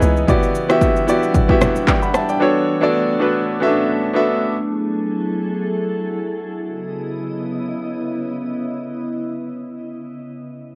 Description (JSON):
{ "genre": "amapiano", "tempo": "113 BPM", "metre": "4/4", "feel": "swing 55% on 16ths", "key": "C# phrygian", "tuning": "A4 = 439 Hz", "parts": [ { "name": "clear concert grand piano", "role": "accompaniment", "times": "0.0-4.6 s", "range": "B3 to B5", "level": "-19 LUFS", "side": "equal", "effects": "none" }, { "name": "glassy FM pad", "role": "sustained chords", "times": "0.0-10.2 s", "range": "C#3 to F#5", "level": "-26 LUFS", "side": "equal", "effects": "ensemble chorus, built-in reverb, sidechain pumping" }, { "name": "deep house drum kit", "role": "drums", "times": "0.0-2.4 s", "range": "handclaps, kick drum, rim click, shaker", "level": "-20 LUFS", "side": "equal", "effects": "overdrive" }, { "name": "congas and bongos", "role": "percussion", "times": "0.3-2.0 s", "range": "none", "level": "-27 LUFS", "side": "equal", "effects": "none" } ], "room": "light reverb", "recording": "worn, warbling old tape, cassette tape, warbly pitch drift", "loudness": "-19 LUFS", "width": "mono", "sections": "0.0-6.7 A section; 6.7-10.8 B section", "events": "drop 0.0-6.7", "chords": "0.3 Em9; 2.4 Bm9; 4.5 F#m9; 6.7 C#m9", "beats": "| 0.28 0.81 1.35 1.88 | 2.41 2.94 3.47 4.00 | 4.53 5.06 5.59 6.12 | 6.66 7.19 7.72 8.25 | 8.78 9.31 9.84" }